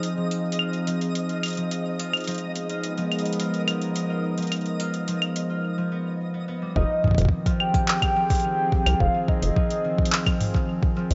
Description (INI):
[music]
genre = IDM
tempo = 107 BPM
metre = 4/4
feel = straight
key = F minor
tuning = A4 = 440 Hz
[part]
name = warbly tape-like pad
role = sustained chords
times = 0.0-11.1 s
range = F3 to Eb5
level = -33 LUFS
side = equal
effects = chorus, built-in reverb
[part]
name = concert harp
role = arpeggios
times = 0.0-11.1 s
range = Eb3 to F4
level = -31 LUFS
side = equal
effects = low-pass filter, delay
[part]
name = booming analog drum machine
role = drums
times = 0.0-11.1 s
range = claves, handclaps, hi-hat, toms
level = -30 LUFS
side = equal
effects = none
[part]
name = twinkling granular texture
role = texture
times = 0.0-5.6 s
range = Eb5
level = -41 LUFS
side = equal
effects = built-in reverb
[part]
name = warm velvety synth lead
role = melody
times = 6.8-10.4 s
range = Eb5 to G5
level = -28 LUFS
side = equal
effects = chorus, tremolo, delay
[part]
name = deep acid bass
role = bass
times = 6.8-11.1 s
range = F1 to C2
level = -24 LUFS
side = equal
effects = none
[part]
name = electronic kick drum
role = drums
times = 6.8-10.9 s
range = none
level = -26 LUFS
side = equal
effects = none
[sound]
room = moderate echo chamber reverb, RT60 2.2 s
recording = nothing above 7.7 kHz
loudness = -25 LUFS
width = mono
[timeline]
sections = 0.0-6.8 A section; 6.8-11.1 B section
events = filter sweep on harp 0.0-6.8; break 5.6-6.8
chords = 0.0 Fm7; 2.3 Abmadd9; 6.8 Fm7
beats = | 0.03 0.59 1.15 1.71 | 2.27 2.83 3.40 3.96 | 4.52 5.08 5.64 6.20 | 6.76 7.32 7.88 8.44 | 9.00 9.56 10.12 10.69